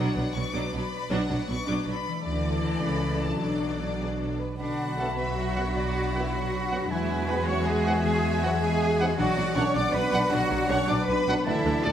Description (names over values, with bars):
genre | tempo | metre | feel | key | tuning
cinematic | 105 BPM (dotted quarters) | 6/8 | straight | B dorian | A4 = 445 Hz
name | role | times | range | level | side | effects
clear chamber violin section | melody | 0.0-11.9 s | D5 to D6 | -37 LUFS | left 4 dB | none
clear symphonic violin section | second line | 0.0-11.9 s | G#4 to G#5 | -36 LUFS | left 2 dB | none
rich symphonic viola section | accompaniment | 0.0-11.9 s | D3 to D5 | -31 LUFS | equal | none
concert harp | arpeggios | 0.0-11.9 s | B2 to D6 | -33 LUFS | left 6 dB | none
rich symphonic cello section | bass | 0.0-11.9 s | B2 to D5 | -31 LUFS | right 2 dB | none
rich symphonic double bass section | bass | 0.0-11.9 s | B1 to E2 | -32 LUFS | right 2 dB | none
dark clarinet | second line | 4.6-11.9 s | D5 to F#5 | -39 LUFS | left 1 dB | none
small flute group | second line | 4.6-11.9 s | D5 to D6 | -36 LUFS | left 1 dB | none
warm oboe | second line | 4.6-11.9 s | F#5 to B5 | -36 LUFS | right 2 dB | none
warm French horn section | sustained chords | 4.6-11.9 s | D3 to D4 | -34 LUFS | left 2 dB | none
mellow trombone section | sustained chords | 5.0-11.9 s | F#2 to D4 | -37 LUFS | right 2 dB | none
clear trumpet | stabs | 5.0-11.9 s | D5 to F#5 | -35 LUFS | right 1 dB | none
room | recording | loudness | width
wet scoring stage reverb, RT60 2.0 s | none | -24 LUFS | side -10 dB against mid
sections
0.0-4.6 A section; 4.6-11.9 A section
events
none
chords
0.0 Bm; 2.3 Dsus2; 3.4 Bm7; 4.6 Bm; 6.9 Eadd9; 9.2 Bm